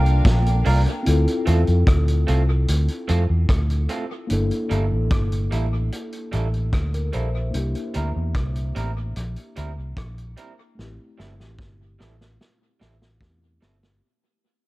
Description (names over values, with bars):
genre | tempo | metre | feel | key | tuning
lovers rock reggae | 74 BPM | 4/4 | straight | G dorian | A4 = 439 Hz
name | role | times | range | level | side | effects
hollow clarinet-like synth lead | melody | 0.0-0.7 s | G5 | -33 LUFS | right 3 dB | chorus, phaser, dub echo
bright saxophone section | second line | 0.0-0.6 s | D3 to F4 | -42 LUFS | right 2 dB | none
warm studio string section | second line | 0.0-1.0 s | D4 to F5 | -35 LUFS | left 2 dB | dub echo
mellow tine electric piano | accompaniment | 0.0-14.0 s | A3 to E5 | -29 LUFS | left 2 dB | medium stereo tremolo, dub echo
vintage muted fingered electric bass | bass | 0.0-14.0 s | G1 to F2 | -20 LUFS | equal | none
vintage drum kit | drums | 0.1-14.0 s | hi-hat, kick drum, rim click, snare drum | -24 LUFS | equal | dub echo
electric guitar through a small old amp | stabs | 0.6-13.8 s | G3 to Bb4 | -30 LUFS | right 4 dB | harmonic tremolo
room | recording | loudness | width
studio reverb | dark, warm production | -19 LUFS | side -19 dB against mid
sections
0.0-1.1 A section; 1.1-14.0 B section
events
fade-out 1.1-14.0; drum fill 10.8-14.0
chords
0.0 Gm7; 1.1 Dm7; 4.3 Gm69; 7.5 C7; 10.8 Am7